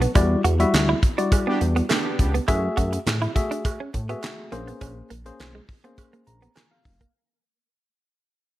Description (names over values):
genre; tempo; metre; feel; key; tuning
early-eighties boogie funk; 103 BPM; 4/4; straight; unclear; A4 = 440 Hz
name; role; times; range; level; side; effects
direct-recorded clean electric guitar; riff; 0.0-7.1 s; G#3 to F#4; -28 LUFS; right 4 dB; analog chorus
chorused synth bass; bass; 0.0-7.1 s; E#1 to A2; -24 LUFS; equal; none
damped 70s drum kit; drums; 0.0-7.1 s; handclaps, hi-hat, kick drum, snare drum; -23 LUFS; equal; gated reverb
tine electric piano; accompaniment; 0.1-7.1 s; G3 to A#5; -26 LUFS; left 3 dB; none
cowbell; percussion; 0.2-6.7 s; none; -34 LUFS; right 6 dB; none
analog synth brass; second line; 1.5-2.3 s; B3 to G4; -28 LUFS; right 2 dB; chorus
room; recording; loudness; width
small room reverb; none; -20 LUFS; side -15 dB against mid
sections
0.0-7.1 A section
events
fade-out 0.0-7.1; tine electric piano fill 6.0-7.1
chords
0.2 Em9; 2.5 F#m9; 4.5 A#m9